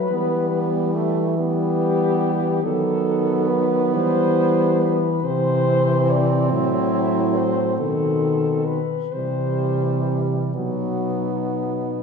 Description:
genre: classical, lyrical piece for horn quartet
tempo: 41-48 BPM (dotted quarters)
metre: 6/8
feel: rubato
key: E minor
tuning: A4 = 440 Hz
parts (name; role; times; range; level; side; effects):
- warm French horn; melody; 0.0-12.0 s; D#4 to D5; -24 LUFS; left 4 dB; none
- clear French horn; second line; 0.0-12.0 s; G3 to C4; -25 LUFS; right 6 dB; none
- warm French horn; accompaniment; 0.0-12.0 s; D#3 to G3; -24 LUFS; left 3 dB; none
- mellow French horn; bass; 0.1-12.0 s; A2 to E3; -24 LUFS; right 1 dB; none
room: wet scoring stage reverb, RT60 1.6 s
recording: recorded in a church or concert hall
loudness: -18 LUFS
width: side -5 dB against mid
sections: 0.0-12.0 A section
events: none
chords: 0.1 Em; 2.6 B7/D#; 3.9 Em; 5.2 C; 6.5 F#m7b5/A; 7.8 B7b9; 9.1 C; 10.5 B

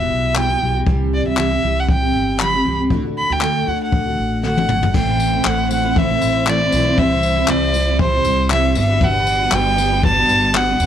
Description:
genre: acoustic pop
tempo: 118 BPM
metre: 4/4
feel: swing 55% on 16ths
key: unclear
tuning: A4 = 444 Hz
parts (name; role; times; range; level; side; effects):
- warm violin; melody; 0.0-10.9 s; C5 to B5; -18 LUFS; equal; none
- fingerpicked steel-string acoustic guitar; accompaniment; 0.0-10.9 s; E2 to G4; -20 LUFS; right 1 dB; double-tracked left and right
- upright bass; bass; 0.0-10.9 s; E1 to D2; -21 LUFS; equal; transformer saturation
- jazz brush drum kit; drums; 0.4-10.9 s; crash cymbal, handclaps, kick drum, snare drum, tambourine, toms; -21 LUFS; left 3 dB; none
- clear studio string section; sustained chords; 5.0-10.9 s; G3 to C5; -28 LUFS; equal; none
room: light reverb, small room ambience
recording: 1960s-style stereo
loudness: -14 LUFS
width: side -9 dB against mid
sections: 0.0-4.9 A section; 4.9-10.9 B section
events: drum fill 4.4-4.9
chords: 0.0 Emadd9; 0.9 C; 2.9 D; 4.9 Am; 7.0 C; 8.8 Gmaj7

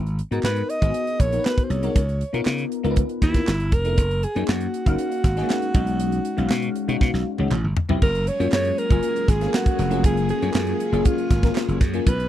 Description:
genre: polished 1980s jazz-funk pop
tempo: 119 BPM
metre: 4/4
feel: straight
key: F# major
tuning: A4 = 441 Hz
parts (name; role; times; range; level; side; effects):
- slap bass; bass; 0.0-12.3 s; E#1 to C#3; -24 LUFS; equal; none
- tight funk drum kit; drums; 0.1-12.3 s; crash cymbal, hi-hat, kick drum, snare drum, toms; -20 LUFS; equal; none
- bell-like FM electric piano; accompaniment; 0.3-12.1 s; G#3 to E#5; -26 LUFS; left 4 dB; phaser, ensemble chorus
- breathy alto saxophone; melody; 0.4-12.3 s; E4 to D#5; -26 LUFS; right 1 dB; slapback echo
- group handclap; percussion; 0.4-11.7 s; none; -39 LUFS; right 6 dB; none
- string machine, full ensemble; sustained chords; 8.0-12.3 s; C#3 to G#4; -31 LUFS; equal; ensemble chorus
room: little or no reverb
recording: dry, close 1970s-style studio recording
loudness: -19 LUFS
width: side -12 dB against mid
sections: 0.0-8.0 A section; 8.0-12.3 B section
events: drum fill 7.0-8.0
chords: 0.0 G#m7; 2.0 C#13; 3.5 G69; 4.0 F#69; 5.7 B6; 7.5 Am7; 8.0 F#maj9

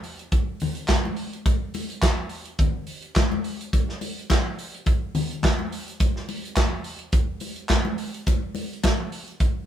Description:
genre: disco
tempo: 106 BPM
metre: 4/4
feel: straight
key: none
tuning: none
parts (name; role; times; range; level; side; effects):
- vintage drum kit; drums; 0.0-9.5 s; handclaps, hi-hat, kick drum, snare drum; -23 LUFS; equal; none
- congas; percussion; 0.3-9.5 s; none; -30 LUFS; left 3 dB; none
room: light reverb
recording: band playing live in one room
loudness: -23 LUFS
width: side -10 dB against mid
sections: 0.0-9.7 A section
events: none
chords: none

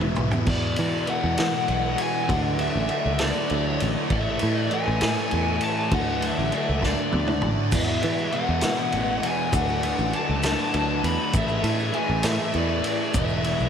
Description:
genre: psychedelic rock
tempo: 66 BPM (dotted quarters)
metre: 6/8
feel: straight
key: E mixolydian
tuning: A4 = 440 Hz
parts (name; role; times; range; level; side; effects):
- bright tonewheel organ; sustained chords; 0.0-13.7 s; F#3 to E5; -35 LUFS; right 4 dB; slow rotary speaker
- fuzz guitar; riff; 0.0-13.7 s; E2 to D4; -27 LUFS; equal; distortion, phaser
- picked electric bass; bass; 0.0-13.7 s; E1 to E3; -27 LUFS; equal; none
- vintage drum kit; drums; 0.0-13.6 s; crash cymbal, kick drum, ride cymbal, snare drum, toms; -27 LUFS; equal; none
- maracas; percussion; 0.2-0.4, 7.7-13.7 s; none; -40 LUFS; right 6 dB; none
- fuzz lead guitar; melody; 0.5-13.7 s; D5 to B5; -27 LUFS; left 3 dB; distortion, ping-pong delay
room: moderate huge ambient reverb, RT60 8.1 s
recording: dreamy mix soaked in reverb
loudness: -21 LUFS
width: side -8 dB against mid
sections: 0.5-13.7 A section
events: drum fill 0.0-0.5, 6.8-7.7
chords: 0.5 E; 2.3 Dadd9; 4.1 Amaj7; 5.9 Dadd9; 7.7 E; 9.5 Dadd9; 11.3 A5; 13.2 Esus4

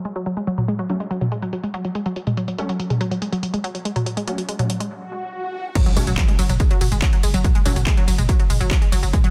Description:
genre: driving peak-time techno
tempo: 142 BPM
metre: 4/4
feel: straight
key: F# minor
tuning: A4 = 440 Hz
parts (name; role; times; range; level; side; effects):
- unison pluck; riff; 0.1-9.3 s; F#3 to G#3; -27 LUFS; equal; sidechain pumping, digital delay
- techno drum kit; drums; 0.1-9.3 s; crash cymbal, handclaps, hi-hat, ride cymbal, tambourine, toms; -27 LUFS; equal; overdrive, sidechain pumping on hats, studio ambience, sidechain pumping on toms, sidechain pumping on cymbals, sidechain pumping on perc
- rave stab; stabs; 0.9-7.7 s; F#3 to C#4; -32 LUFS; equal; chorus, built-in reverb, sidechain pumping, digital delay
- swell and impact; sound effects; 5.0-7.4 s; none; -32 LUFS; equal; none
- electronic kick drum; drums; 5.8-9.2 s; none; -19 LUFS; equal; overdrive, studio ambience
- growling 808-style bass; bass; 6.0-9.1 s; F#1; -24 LUFS; equal; overdrive, sidechain pumping, low-pass filter
room: light reverb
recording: dense, heavily limited modern master, low-pass filter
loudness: -21 LUFS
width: mono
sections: 0.0-5.8 A section; 5.8-9.3 B section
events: filter sweep on synth arpeggio sound 0.0-5.8; filter sweep on synth stab 0.0-5.8; filter sweep 0.0-5.8; break 4.9-5.8; swell 5.0-5.8; drop 5.8-9.3; impact 5.8-7.4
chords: none

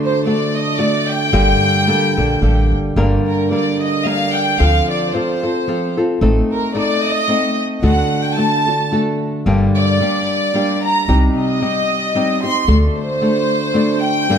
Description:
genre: mexican folk, mariachi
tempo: 111 BPM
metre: 3/4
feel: swing 55% on 8ths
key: G minor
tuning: A4 = 440 Hz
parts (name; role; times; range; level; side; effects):
- clear studio violin section; melody; 0.0-14.4 s; Bb4 to C6; -18 LUFS; equal; none
- flamenco guitar; accompaniment; 0.0-14.4 s; G2 to Bb4; -17 LUFS; equal; none
- upright bass; bass; 1.3-12.9 s; G1 to D2; -16 LUFS; equal; none
room: moderate recital hall reverb, RT60 1.6 s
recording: none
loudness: -14 LUFS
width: side -8 dB against mid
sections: 0.0-3.0 A section; 3.0-14.4 A section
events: none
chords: 0.0 D; 1.3 Gmadd9; 3.0 Gm; 4.6 Dm7; 6.2 Adim; 7.8 D; 9.5 Gm; 11.1 Cm; 12.7 D

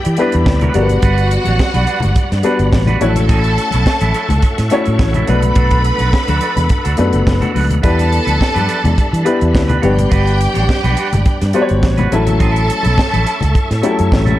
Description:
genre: disco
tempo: 105 BPM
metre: 4/4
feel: straight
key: unclear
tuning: A4 = 440 Hz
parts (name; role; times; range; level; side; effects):
- clear studio string section; second line; 0.0-14.1 s; F#4 to B5; -21 LUFS; equal; none
- warm baby grand piano; accompaniment; 0.0-14.4 s; F#3 to C#5; -19 LUFS; left 3 dB; none
- bright tonewheel organ; sustained chords; 0.0-14.4 s; G3 to C#6; -25 LUFS; equal; chorus vibrato, fast rotary speaker
- tight funk drum kit; drums; 0.0-14.4 s; hi-hat, kick drum, snare drum; -16 LUFS; equal; none
- clean electric guitar; accompaniment; 0.1-14.4 s; C#4 to C#5; -24 LUFS; right 6 dB; none
- fingered electric bass; bass; 0.1-14.3 s; F#1 to E3; -15 LUFS; equal; none
- congas; percussion; 0.2-14.4 s; none; -22 LUFS; left 3 dB; none
room: small room ambience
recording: dark, warm production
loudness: -11 LUFS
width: side -14 dB against mid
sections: 0.0-14.4 A section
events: none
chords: 0.0 Em7; 0.7 Gmaj7; 3.0 F#m7/A; 5.3 Bm7; 7.8 Em7; 9.8 Gmaj7; 12.1 F#m7/A

